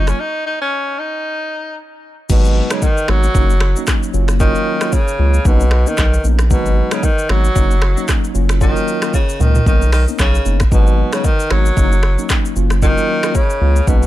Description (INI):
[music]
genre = afrobeats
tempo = 114 BPM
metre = 4/4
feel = swing 58% on 16ths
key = G# dorian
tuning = A4 = 440 Hz
[part]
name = clear tenor saxophone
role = melody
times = 0.0-14.1 s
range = B2 to D#4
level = -20 LUFS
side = equal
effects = analog delay
[part]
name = mellow tine electric piano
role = accompaniment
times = 0.0-14.1 s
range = F#3 to E#4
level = -22 LUFS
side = equal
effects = medium stereo tremolo
[part]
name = saturated sub bass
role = bass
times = 0.0-14.1 s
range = F#1 to C#2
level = -14 LUFS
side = equal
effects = none
[part]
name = afro-pop drum kit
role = drums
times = 0.1-14.1 s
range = crash cymbal, finger snaps, handclaps, hi-hat, kick drum, rim click, shaker, toms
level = -16 LUFS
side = equal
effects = none
[sound]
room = digital ambience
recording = dry, gritty hardware recording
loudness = -13 LUFS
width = side -15 dB against mid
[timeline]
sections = 0.0-2.3 A section; 2.3-14.1 B section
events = break 0.2-2.3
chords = 0.0 F#maj7; 1.2 N.C.; 2.3 G#m7; 3.4 D#m7/F#; 4.1 F#maj7; 5.5 Bmaj9; 6.5 G#m7; 7.6 D#m7/F#; 8.3 F#maj7; 9.7 Bmaj9; 10.7 G#m7; 11.8 D#m7/F#; 12.6 F#maj7